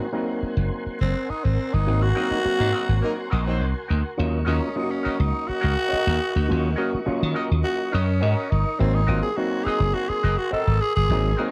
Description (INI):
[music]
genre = funk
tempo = 104 BPM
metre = 4/4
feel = straight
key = unclear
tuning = A4 = 443 Hz
[part]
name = tonewheel organ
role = sustained chords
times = 0.0-11.5 s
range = Bb4 to Db6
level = -37 LUFS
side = equal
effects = chorus vibrato, slow rotary speaker
[part]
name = overdriven clav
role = stabs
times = 0.0-11.5 s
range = Gb3 to Gb4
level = -30 LUFS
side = equal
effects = auto-wah
[part]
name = slap bass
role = bass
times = 0.4-11.3 s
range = Gb1 to Eb3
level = -24 LUFS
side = equal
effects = none
[part]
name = growling tenor saxophone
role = melody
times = 1.0-11.5 s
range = C4 to A4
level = -29 LUFS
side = equal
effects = tape echo
[part]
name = semi-hollow electric guitar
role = accompaniment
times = 2.1-11.5 s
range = C4 to Eb5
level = -32 LUFS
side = equal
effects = wah, tremolo
[part]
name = dark horn section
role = second line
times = 2.3-3.6 s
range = Gb3 to C5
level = -32 LUFS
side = equal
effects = none
[sound]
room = light reverb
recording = dark, warm production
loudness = -23 LUFS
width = mono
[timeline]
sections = 0.0-11.5 A section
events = break 0.0-1.9; tenor saxophone solo 0.0-11.5; band accent 1.9-4.2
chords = 0.0 Ab9; 4.2 Ebm7; 8.8 Ab9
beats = 0.14 0.72 1.30 | 1.87 2.45 3.03 3.60 | 4.18 4.76 5.33 5.91 | 6.49 7.06 7.64 8.22 | 8.79 9.37 9.95 10.52 | 11.10